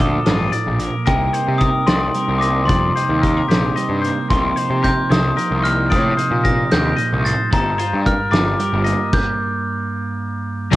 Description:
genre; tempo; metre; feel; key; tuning
math rock and midwest emo; 75 BPM (dotted quarters); 6/8; straight; G minor; A4 = 443 Hz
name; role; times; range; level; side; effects
glockenspiel with soft plastic mallets; melody; 0.0-10.2 s; G5 to Bb6; -21 LUFS; left 1 dB; none
twelve-string electric guitar; accompaniment; 0.0-10.8 s; G2 to Bb4; -22 LUFS; right 3 dB; none
twangy electric guitar; arpeggios; 0.0-10.8 s; F4 to Eb5; -27 LUFS; left 7 dB; none
fuzz picked electric bass; bass; 0.0-10.8 s; G1 to C3; -21 LUFS; equal; overdrive
loose indie drum kit; drums; 0.0-10.8 s; crash cymbal, hi-hat, kick drum, snare drum; -20 LUFS; equal; cassette tape
cranked stack guitar; riff; 10.7-10.8 s; G2 to G3; -17 LUFS; left 1 dB; overdrive
room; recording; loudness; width
little or no reverb; home recording on cassette; -15 LUFS; side -16 dB against mid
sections
0.0-10.7 A section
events
stop 9.1-10.7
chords
0.0 Bbmaj7; 1.1 Cm7; 4.3 F9sus4/C; 7.5 Gm7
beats
0.27 | 1.08 1.88 | 2.69 3.49 | 4.30 5.10 | 5.91 6.71 | 7.51 8.32 | 9.12 9.92 | 10.72

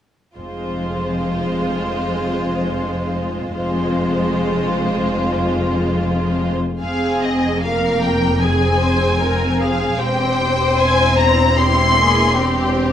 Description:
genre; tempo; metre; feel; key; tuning
classical, slow romantic movement for string orchestra; 75 BPM; 4/4; uneven beats, rubato; F minor; A4 = 440 Hz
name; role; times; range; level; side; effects
rich studio violin section; melody; 0.4-12.7 s; C5 to C6; -22 LUFS; left 1 dB; none
rich chamber violin section; second line; 0.4-12.9 s; F4 to C5; -22 LUFS; left 2 dB; none
rich symphonic viola section; accompaniment; 0.4-12.9 s; Ab3 to Bb4; -23 LUFS; right 1 dB; none
rich chamber cello section; bass; 0.4-12.9 s; E2 to F2; -22 LUFS; left 1 dB; none
warm chamber double bass section; bass; 0.4-12.9 s; E1 to F1; -24 LUFS; equal; none
room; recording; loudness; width
wet stone room reverb, RT60 1.0 s; small room ambience; -15 LUFS; side -10 dB against mid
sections
0.4-6.8 A section; 6.8-12.9 B section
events
none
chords
0.4 Fm; 10.0 C/E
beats
| 0.36 1.19 1.99 2.77 | 3.55 4.31 5.09 5.92 | 6.80 7.61 8.41 9.21 | 9.99 10.79 11.58 12.36

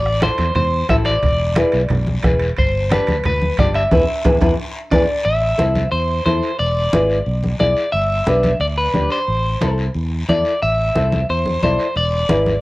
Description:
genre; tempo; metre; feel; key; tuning
latin, cumbia; 179 BPM; 4/4; straight; A minor from 5.3 s; A4 = 439 Hz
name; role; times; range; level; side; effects
electric guitar at the edge of break-up; melody; 0.0-12.6 s; B4 to E5; -20 LUFS; equal; spring reverb, slapback echo
fretless electric bass; bass; 0.0-12.6 s; E1 to E2; -20 LUFS; equal; none
bombo; percussion; 0.1-5.0 s; none; -20 LUFS; right 1 dB; none
flamenco guitar; accompaniment; 0.2-12.5 s; D4 to D5; -19 LUFS; left 1 dB; none
congas; percussion; 0.2-12.6 s; none; -22 LUFS; equal; none
guiro; percussion; 0.2-12.6 s; none; -34 LUFS; left 2 dB; none
timbales; percussion; 0.2-5.0 s; none; -30 LUFS; right 4 dB; none
room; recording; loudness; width
light reverb; worn, warbling old tape, cassette tape, warbly pitch drift; -15 LUFS; side -19 dB against mid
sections
0.0-5.3 A section; 5.3-12.6 B section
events
band accent 3.9-5.3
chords
0.0 Am; 1.2 E7; 2.6 G; 3.9 E7; 5.3 Am; 6.6 E7; 7.9 G; 9.3 Am; 12.0 E7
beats
0.22 0.56 0.89 | 1.23 1.56 1.90 2.23 | 2.57 2.90 3.24 3.58 | 3.91 4.25 4.58 4.92 | 5.25 5.59 5.92 6.26 | 6.60 6.93 7.27 7.60 | 7.94 8.27 8.61 8.95 | 9.28 9.62 9.95 10.29 | 10.62 10.96 11.29 11.63 | 11.96 12.30

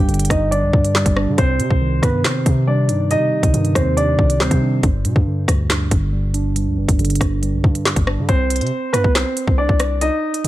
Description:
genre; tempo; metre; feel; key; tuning
hip hop, drill; 139 BPM; 4/4; half-time; C harmonic minor; A4 = 437 Hz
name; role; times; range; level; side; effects
dark concert grand piano; melody; 0.0-4.8, 8.3-10.5 s; B3 to G5; -20 LUFS; right 1 dB; low-pass filter
mellow tine electric piano; accompaniment; 0.0-8.3 s; G2 to Eb4; -20 LUFS; right 1 dB; low-pass filter
long sustained 808-style bass; bass; 0.0-10.5 s; G1 to D3; -21 LUFS; equal; none
drill drum kit; drums; 0.1-10.5 s; handclaps, hi-hat, kick drum, rim click, snare drum; -18 LUFS; equal; none
room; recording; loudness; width
little or no reverb; none; -15 LUFS; side -15 dB against mid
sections
0.0-8.3 A section; 8.3-10.5 B section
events
none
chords
0.0 G5; 1.4 Cmadd9; 4.8 G5; 8.3 Cmadd9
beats
0.09 0.52 0.95 | 1.38 1.81 2.24 2.68 | 3.11 3.54 3.97 4.40 | 4.83 5.27 5.70 6.13 | 6.56 6.99 7.42 7.86 | 8.29 8.72 9.15 9.58 | 10.01 10.45

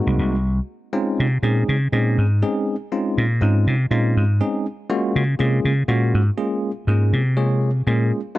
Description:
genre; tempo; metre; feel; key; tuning
jazz; 121 BPM; 4/4; straight; Db major; A4 = 436 Hz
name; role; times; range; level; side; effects
bell-like tine electric piano; accompaniment; 0.0-8.4 s; Ab3 to Db5; -22 LUFS; equal; medium stereo tremolo
vintage slap bass; bass; 0.1-8.1 s; C2 to Db3; -18 LUFS; equal; none
room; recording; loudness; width
small room reverb; dry, close 1970s-style studio recording; -18 LUFS; side -16 dB against mid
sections
0.7-8.4 A section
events
slap bass solo 0.7-8.4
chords
0.0 Ab9; 0.7 Dbmaj9; 4.6 Gbmaj9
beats
0.19 | 0.69 1.18 1.68 2.17 | 2.67 3.16 3.66 4.15 | 4.65 5.14 5.64 6.13 | 6.63 7.12 7.62 8.11

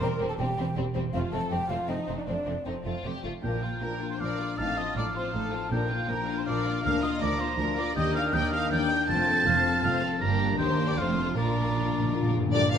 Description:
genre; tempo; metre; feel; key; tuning
classical, dramatic, fast romantic movement for symphony orchestra; 159 BPM; 3/4; straight; Bb major; A4 = 439 Hz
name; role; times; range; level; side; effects
rich symphonic violin section; melody; 0.0-12.8 s; C4 to F5; -37 LUFS; left 5 dB; none
mellow hollow concert flute; second line; 0.0-12.3 s; C5 to A6; -31 LUFS; equal; none
warm symphonic violin section; second line; 0.0-12.8 s; G3 to A5; -36 LUFS; left 2 dB; none
dark symphonic viola section; accompaniment; 0.0-12.8 s; D3 to Bb4; -35 LUFS; equal; none
concert harp; arpeggios; 0.0-12.8 s; F2 to D5; -34 LUFS; left 8 dB; none
rich studio cello section; bass; 0.0-12.8 s; D2 to Bb2; -34 LUFS; right 4 dB; none
warm symphonic double bass section; bass; 0.0-12.8 s; E1 to Eb2; -34 LUFS; right 4 dB; none
clear oboe; second line; 3.4-12.3 s; D5 to Bb5; -33 LUFS; right 3 dB; none
mellow French horn section; sustained chords; 3.4-12.5 s; A3 to G4; -35 LUFS; left 3 dB; none
timpani; percussion; 3.4-4.0, 9.1-12.5 s; F2 to Bb2; -33 LUFS; right 2 dB; none
room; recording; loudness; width
wet scoring stage reverb, RT60 2.0 s; lossy compression artefacts; -25 LUFS; side -8 dB against mid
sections
0.0-3.4 A section; 3.4-12.5 B section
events
timpani fill 11.4-12.5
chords
0.0 C7/E; 1.1 F; 3.4 Bb; 4.6 F7/A; 5.7 Bb; 6.8 Bb/D; 8.0 Ebmaj7; 9.1 F; 10.2 Gm; 10.6 Eb; 11.0 F; 11.4 Bb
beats
| 0.02 0.39 0.77 | 1.14 1.52 1.90 | 2.28 2.67 3.06 | 3.44 3.82 4.21 | 4.59 4.97 5.35 | 5.72 6.10 6.47 | 6.85 7.22 7.59 | 7.97 8.34 8.71 | 9.09 9.46 9.84 | 10.22 10.60 10.98 | 11.37 11.76 12.15 | 12.54

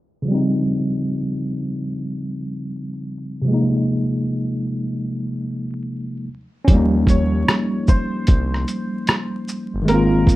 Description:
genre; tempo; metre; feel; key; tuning
lo-fi hip hop; 75 BPM; 4/4; swing 65% on 16ths; unclear; A4 = 440 Hz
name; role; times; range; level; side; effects
tine electric piano; accompaniment; 0.2-10.4 s; C3 to F4; -20 LUFS; equal; overdrive, fast stereo tremolo, low-pass filter
smooth synth bass; bass; 6.7-10.4 s; G1 to Eb2; -21 LUFS; equal; none
lo-fi sampler-style drum kit; drums; 6.7-10.4 s; hi-hat, kick drum, rim click, shaker; -15 LUFS; equal; none
bright upright piano; melody; 7.1-10.4 s; Bb4 to Db5; -28 LUFS; equal; low-pass filter, plate reverb
room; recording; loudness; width
wet small room reverb, RT60 0.5 s; rough home demo mix, vinyl crackle, low-pass filter; -18 LUFS; side -17 dB against mid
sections
0.3-6.7 A section; 6.7-10.4 B section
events
filter sweep 0.3-6.7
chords
0.3 Eb13; 3.5 Ab69; 6.3 N.C.; 6.7 Eb13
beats
| 0.27 1.07 1.87 2.67 | 3.47 4.27 5.07 5.87 | 6.67 7.47 8.27 9.07 | 9.87

